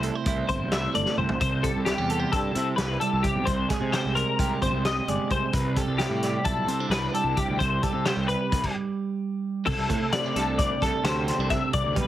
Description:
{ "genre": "math rock and midwest emo", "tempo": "261 BPM (eighths)", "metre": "9/8", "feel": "straight", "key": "C major", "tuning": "A4 = 441 Hz", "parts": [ { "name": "twelve-string electric guitar", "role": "accompaniment", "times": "0.0-12.1 s", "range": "C3 to D5", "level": "-28 LUFS", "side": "right 6 dB", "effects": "spring reverb" }, { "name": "twelve-string electric guitar", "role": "arpeggios", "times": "0.0-12.1 s", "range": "G4 to E5", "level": "-27 LUFS", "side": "left 4 dB", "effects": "ensemble chorus" }, { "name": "fuzz fingered electric bass", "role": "bass", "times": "0.0-12.1 s", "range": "G1 to C3", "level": "-30 LUFS", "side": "equal", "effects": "overdrive" }, { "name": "loose indie drum kit", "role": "drums", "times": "0.0-12.1 s", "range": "crash cymbal, hi-hat, kick drum, snare drum, toms", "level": "-30 LUFS", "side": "equal", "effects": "none" } ], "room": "little or no reverb", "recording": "heavily compressed radio sound, multiband compression", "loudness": "-23 LUFS", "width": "side -13 dB against mid", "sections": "0.0-9.7 A section; 9.7-12.1 B section", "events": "drum fill 1.1-1.4; stop 8.6-9.7", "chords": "0.0 Am/C; 1.4 Cmaj7; 3.5 Abmaj7/C; 5.5 Em7; 7.6 C; 9.7 C69" }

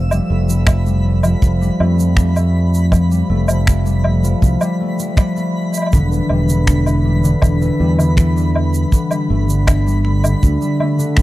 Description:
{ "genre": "folktronica", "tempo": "80 BPM", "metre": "4/4", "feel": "straight", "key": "F lydian", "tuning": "A4 = 440 Hz", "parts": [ { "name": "concert harp", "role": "arpeggios", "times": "0.0-11.2 s", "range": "D3 to A3", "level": "-18 LUFS", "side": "left 1 dB", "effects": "tape echo" }, { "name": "fingered electric bass", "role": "bass", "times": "0.0-10.6 s", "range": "E1 to F2", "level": "-15 LUFS", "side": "equal", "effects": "none" }, { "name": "twinkling granular texture", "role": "texture", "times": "0.0-11.2 s", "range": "B5", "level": "-31 LUFS", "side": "equal", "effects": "built-in reverb" }, { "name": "woodblock, shaker and finger snaps", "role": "drums", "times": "0.1-11.2 s", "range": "none", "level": "-21 LUFS", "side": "right 1 dB", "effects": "none" }, { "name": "kick drum", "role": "drums", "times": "0.7-11.2 s", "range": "none", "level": "-12 LUFS", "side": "equal", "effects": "none" } ], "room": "little or no reverb", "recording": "dry, close 1970s-style studio recording", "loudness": "-13 LUFS", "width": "side -16 dB against mid", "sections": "0.0-11.2 A section", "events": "none", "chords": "0.0 Fadd9; 5.9 Em7; 8.9 Gadd9" }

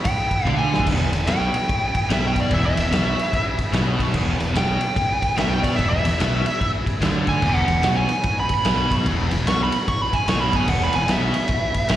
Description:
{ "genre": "blues rock power trio and southern rock", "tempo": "147 BPM", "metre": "4/4", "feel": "swing 63% on 8ths", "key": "E major", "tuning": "A4 = 440 Hz", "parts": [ { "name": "fuzz lead guitar", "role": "melody", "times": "0.0-12.0 s", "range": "D5 to C#6", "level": "-23 LUFS", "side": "right 1 dB", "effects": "distortion, slapback echo, digital delay" }, { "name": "overdriven tonewheel organ", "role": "sustained chords", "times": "0.0-12.0 s", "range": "G#3 to E5", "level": "-35 LUFS", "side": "right 2 dB", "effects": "lush chorus" }, { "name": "raw garage drum kit", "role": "drums", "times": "0.0-12.0 s", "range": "crash cymbal, kick drum, ride cymbal, snare drum, toms", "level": "-22 LUFS", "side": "equal", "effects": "none" }, { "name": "crunchy overdriven guitar", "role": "riff", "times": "0.5-12.0 s", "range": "E2 to D3", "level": "-25 LUFS", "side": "equal", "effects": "slapback echo" }, { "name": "fuzz fingered electric bass", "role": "bass", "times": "0.5-12.0 s", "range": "E1 to D2", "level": "-24 LUFS", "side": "equal", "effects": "overdrive" } ], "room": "light reverb, small room ambience", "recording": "live gig heard through the venue's PA, recital hall reverb", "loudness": "-18 LUFS", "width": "side -12 dB against mid", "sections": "0.9-12.0 A section", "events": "lead electric guitar solo 0.0-12.0; drum fill 0.5-0.9", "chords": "0.0 E" }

